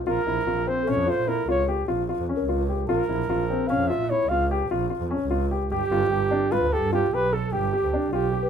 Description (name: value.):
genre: contemporary instrumental, chamber music in an uneven meter.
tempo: 149 BPM.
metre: 7/4.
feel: straight.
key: unclear.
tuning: A4 = 440 Hz.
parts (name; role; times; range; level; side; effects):
mellow flugelhorn; melody; 0.1-8.5 s; G4 to F5; -25 LUFS; right 2 dB; none.
dark baby grand piano; arpeggios; 0.1-8.5 s; C4 to A4; -26 LUFS; left 3 dB; none.
rich double bass; bass; 0.1-8.5 s; G1 to Bb2; -28 LUFS; right 3 dB; none.
celesta; texture; 0.8-3.3, 8.4-8.5 s; A4 to E5; -33 LUFS; left 5 dB; none.
room: light reverb.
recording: minimal, uncompressed stereo recording.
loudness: -22 LUFS.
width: side -8 dB against mid.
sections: 0.0-8.5 A section.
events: none.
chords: 0.1 Bbm; 5.7 G.